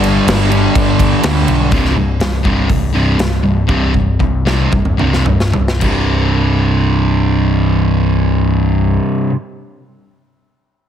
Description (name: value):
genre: hard rock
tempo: 105-125 BPM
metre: 4/4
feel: straight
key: unclear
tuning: A4 = 440 Hz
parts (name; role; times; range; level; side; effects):
- cranked stack guitar; riff; 0.0-9.4 s; C2 to G3; -18 LUFS; right 9 dB; overdrive
- distorted electric guitar; riff; 0.0-1.7 s; G2 to G3; -19 LUFS; equal; overdrive
- sludgy distorted guitar; riff; 0.0-9.3 s; C2 to G3; -18 LUFS; left 9 dB; overdrive
- overdriven picked electric bass; bass; 0.0-9.0 s; C1 to D2; -16 LUFS; equal; none
- big rock drum kit; drums; 0.0-6.0 s; crash cymbal, hi-hat, kick drum, snare drum, toms; -18 LUFS; equal; none
room: light reverb, studio ambience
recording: heavily compressed radio sound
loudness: -11 LUFS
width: side -9 dB against mid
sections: 0.0-1.7 A section; 1.7-5.8 B section; 5.8-10.4 C section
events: slowing down 1.7-5.8; drum fill 3.7-5.8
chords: 0.0 G5; 1.7 C5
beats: 0.27 0.76 1.24 | 1.72 2.20 2.69 3.18 | 3.69 4.20 4.73 5.27 | 5.83 6.40 6.97 7.54 | 8.11 8.68 9.25